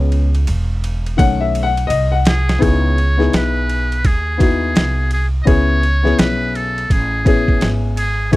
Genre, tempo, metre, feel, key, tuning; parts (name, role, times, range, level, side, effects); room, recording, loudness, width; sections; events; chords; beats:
hip hop, jazz-hop; 84 BPM; 4/4; swing 63% on 16ths; C# minor; A4 = 440 Hz
dark grand piano; accompaniment; 0.0-8.4 s; D#3 to F#5; -19 LUFS; left 5 dB
upright bass; bass; 0.0-8.4 s; E1 to D#2; -17 LUFS; right 1 dB
boom bap sampler-style drum kit; drums; 0.1-8.4 s; hi-hat, kick drum, ride cymbal, snare drum; -16 LUFS; right 1 dB
trumpet with metal mute; melody; 2.3-8.4 s; G#4 to D#5; -21 LUFS; equal
little or no reverb; dry, close 1970s-style studio recording; -13 LUFS; side -18 dB against mid
0.0-2.6 A section; 2.6-8.4 B section
drum fill 0.0-2.6; grand piano solo 0.0-2.6
0.0 E6; 1.2 B9; 2.6 C#m9; 5.5 Amaj7
0.48 1.19 1.91 | 2.62 3.33 4.05 4.76 | 5.48 6.19 6.91 7.62 | 8.33